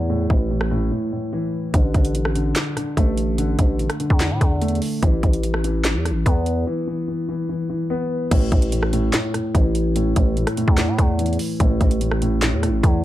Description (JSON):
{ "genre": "hip hop, trap", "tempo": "146 BPM", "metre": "4/4", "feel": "half-time", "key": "unclear", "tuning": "A4 = 440 Hz", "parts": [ { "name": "dark concert grand piano", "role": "accompaniment", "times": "0.0-13.0 s", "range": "A2 to B3", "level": "-23 LUFS", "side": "equal", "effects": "low-pass filter" }, { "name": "growling 808-style bass", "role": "bass", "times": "0.0-13.0 s", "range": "A1 to A2", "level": "-22 LUFS", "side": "equal", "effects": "none" }, { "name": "trap drum kit", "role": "drums", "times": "0.3-12.9 s", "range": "crash cymbal, handclaps, hi-hat, kick drum, rim click, snare drum", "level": "-20 LUFS", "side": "equal", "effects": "none" } ], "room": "digital ambience", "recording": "dark, warm production", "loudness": "-18 LUFS", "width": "side -14 dB against mid", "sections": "0.0-8.3 A section; 8.3-13.0 B section", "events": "break 0.0-1.7, 6.7-8.3", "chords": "0.0 A5; 1.7 D5/A; 5.0 E5/A; 8.3 A5", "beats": "| 0.10 0.51 0.92 1.33 | 1.74 2.15 2.56 2.97 | 3.38 3.79 4.20 4.62 | 5.03 5.44 5.85 6.26 | 6.67 7.08 7.49 7.90 | 8.31 8.72 9.14 9.55 | 9.96 10.37 10.78 11.19 | 11.60 12.01 12.42 12.84" }